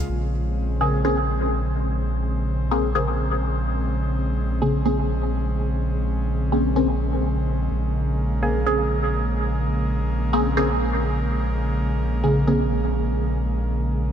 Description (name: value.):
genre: techno.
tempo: 126 BPM.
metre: 4/4.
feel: straight.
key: Bb minor.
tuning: A4 = 444 Hz.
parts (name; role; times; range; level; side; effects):
airy breathy pad; sustained chords; 0.0-14.1 s; Db3 to C4; -27 LUFS; right 1 dB; chorus.
warm sub bass; bass; 0.0-14.1 s; Bb1; -24 LUFS; equal; none.
filtered dub chord stab; stabs; 0.8-12.6 s; Db3 to Ab4; -25 LUFS; equal; phaser, dub echo.
room: light reverb, digital ambience.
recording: none.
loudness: -20 LUFS.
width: side -9 dB against mid.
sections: 0.1-14.1 A section.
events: none.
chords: 0.1 Bbm9.